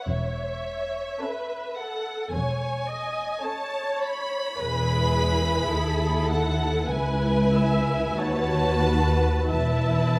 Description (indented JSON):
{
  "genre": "classical, slow romantic movement for string orchestra",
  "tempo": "42-54 BPM",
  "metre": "4/4",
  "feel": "rubato",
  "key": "E major",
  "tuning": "A4 = 440 Hz",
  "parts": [
    { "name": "dark studio violin section", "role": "melody", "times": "0.0-10.2 s", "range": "E5 to B5", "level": "-33 LUFS", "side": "equal", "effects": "none" },
    { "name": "warm symphonic viola section", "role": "accompaniment", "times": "0.0-10.2 s", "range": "G#4 to E5", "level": "-33 LUFS", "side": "equal", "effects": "none" },
    { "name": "dark symphonic cello section", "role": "bass", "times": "0.1-10.2 s", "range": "C#2 to E2", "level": "-30 LUFS", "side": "equal", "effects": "none" },
    { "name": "warm symphonic double bass section", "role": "bass", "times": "0.1-10.2 s", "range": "E1 to D#2", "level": "-30 LUFS", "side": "equal", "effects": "none" },
    { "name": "warm symphonic violin section", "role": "second line", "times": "1.2-10.2 s", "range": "C#4 to B4", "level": "-31 LUFS", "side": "equal", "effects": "none" }
  ],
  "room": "moderate concert hall reverb, RT60 2.4 s",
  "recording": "none",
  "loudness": "-25 LUFS",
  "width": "mono",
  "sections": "0.0-10.2 A section",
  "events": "none",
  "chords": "0.1 A/E; 4.6 E; 6.9 C#m7; 8.2 B7/D#; 9.5 E5"
}